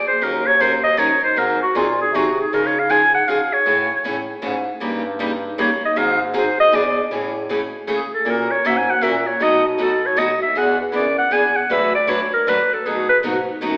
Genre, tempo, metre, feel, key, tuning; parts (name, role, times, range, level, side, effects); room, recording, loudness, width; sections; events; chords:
acoustic string swing (jazz manouche); 157 BPM; 3/4; swing 62% on 8ths; A major from 7.1 s; A4 = 441 Hz
warm clarinet; melody; 0.0-13.2 s; F4 to G#5; -17 LUFS; equal
picked steel-string acoustic guitar; accompaniment; 0.2-13.7 s; B2 to B4; -21 LUFS; equal
mellow bass clarinet; bass; 0.2-13.8 s; D2 to Db3; -26 LUFS; equal
wet recital hall reverb, RT60 1.7 s; recorded in a church or concert hall, AM radio sound; -15 LUFS; side -34 dB against mid
0.0-7.1 A section; 7.1-13.8 A section
clarinet solo 0.0-7.1, 7.1-13.8
0.2 Ebm7; 1.4 Ab7; 2.5 Dbadd9; 3.7 Amaj7; 4.8 Eb7/G; 6.0 Ab7; 6.7 E7; 7.1 Amaj7; 8.3 F#7; 9.4 B7; 10.6 E7; 11.7 D6; 12.9 B7